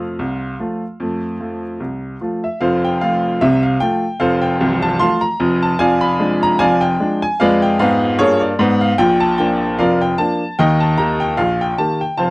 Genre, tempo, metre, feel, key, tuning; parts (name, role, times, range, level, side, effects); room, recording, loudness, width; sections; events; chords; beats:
ragtime piano; 75 BPM; 2/4; swing 55% on 16ths; F major; A4 = 441 Hz
clear baby grand piano; solo; 0.0-12.3 s; C1 to F6; -14 LUFS; equal
little or no reverb; dry, close 1970s-style studio recording; -14 LUFS; side -24 dB against mid
0.0-2.6 A section; 2.6-12.3 B section
0.0 F; 5.8 Fdim7; 9.0 Bb; 10.6 Eb
0.19 | 0.99 1.80 | 2.60 3.40 | 4.20 5.00 | 5.80 6.60 | 7.40 8.20 | 8.99 9.79 | 10.59 11.39 | 12.19